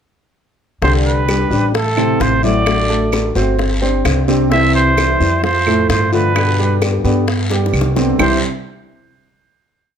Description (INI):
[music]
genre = latin, Cuban son and guajira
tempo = 130 BPM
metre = 4/4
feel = straight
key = C major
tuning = A4 = 442 Hz
[part]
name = breathy trumpet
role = melody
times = 0.8-8.4 s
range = A4 to E5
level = -18 LUFS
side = right 2 dB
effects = none
[part]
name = flamenco guitar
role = accompaniment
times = 0.8-8.4 s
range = B2 to G4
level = -20 LUFS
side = left 6 dB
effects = none
[part]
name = warm baby grand piano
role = arpeggios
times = 0.8-8.4 s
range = A2 to C5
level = -18 LUFS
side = right 4 dB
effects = none
[part]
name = upright bass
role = bass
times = 0.8-8.4 s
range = G1 to G2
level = -18 LUFS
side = equal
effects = none
[part]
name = bongos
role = percussion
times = 0.8-8.3 s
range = none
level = -24 LUFS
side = left 6 dB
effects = none
[part]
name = guiro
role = percussion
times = 0.8-8.3 s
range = none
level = -29 LUFS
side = left 3 dB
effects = none
[part]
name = claves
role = percussion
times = 1.3-8.3 s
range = none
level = -24 LUFS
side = right 5 dB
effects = none
[sound]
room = light reverb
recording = none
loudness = -12 LUFS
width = side -8 dB against mid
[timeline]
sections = 0.8-8.2 verse; 8.2-10.0 final chord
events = drum fill 7.5-8.2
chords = 0.8 Csus2; 1.7 Am; 2.7 D7/A; 3.6 Gsus4; 4.5 C; 5.4 F; 6.4 G; 8.2 C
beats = | 0.82 1.28 1.74 2.21 | 2.67 3.13 3.59 4.05 | 4.51 4.97 5.44 5.90 | 6.36 6.82 7.28 7.74 | 8.20